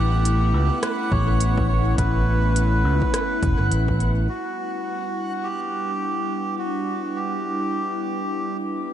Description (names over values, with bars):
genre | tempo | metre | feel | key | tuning
ambient dub | 104 BPM | 4/4 | swing 59% on 16ths | E dorian | A4 = 440 Hz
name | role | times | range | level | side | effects
melodica | melody | 0.0-8.6 s | F#4 to C#5 | -27 LUFS | right 1 dB | dub echo
airy breathy pad | sustained chords | 0.0-8.9 s | G3 to B4 | -27 LUFS | equal | chorus
fingered electric bass | bass | 0.0-4.3 s | E1 to C#2 | -20 LUFS | equal | none
backwards swelling texture | texture | 0.0-4.3 s | F#5 | -38 LUFS | equal | built-in reverb
organic electronic drum kit | drums | 0.3-4.1 s | hi-hat, rim click | -31 LUFS | right 1 dB | dub echo
electronic kick drum | drums | 1.1-4.0 s | none | -27 LUFS | equal | overdrive
room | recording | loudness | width
light reverb | nothing above 10.8 kHz | -20 LUFS | side -10 dB against mid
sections
0.0-4.3 A section; 4.3-8.9 B section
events
filter sweep on analog synth pad 4.3-8.9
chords
0.0 Aadd9; 4.3 Em7